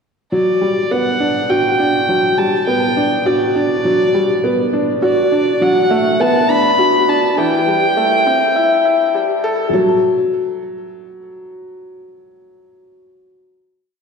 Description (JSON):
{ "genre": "electronica", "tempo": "102 BPM", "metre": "4/4", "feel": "straight", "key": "G major", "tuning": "A4 = 440 Hz", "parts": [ { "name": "dark violin", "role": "melody", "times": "0.3-9.1 s", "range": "D5 to B5", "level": "-18 LUFS", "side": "right 1 dB", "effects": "none" }, { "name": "clear upright piano", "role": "riff", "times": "0.3-14.0 s", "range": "E3 to A4", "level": "-14 LUFS", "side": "left 1 dB", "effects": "ping-pong delay" } ], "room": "wet scoring stage reverb, RT60 1.7 s", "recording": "dark, warm production, high-pass filter", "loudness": "-13 LUFS", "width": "side -5 dB against mid", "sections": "0.3-9.7 build; 9.7-12.1 final note", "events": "build-up 0.3-9.7", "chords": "0.3 Gmaj7; 5.0 Bm7; 7.4 Am7; 9.7 N.C." }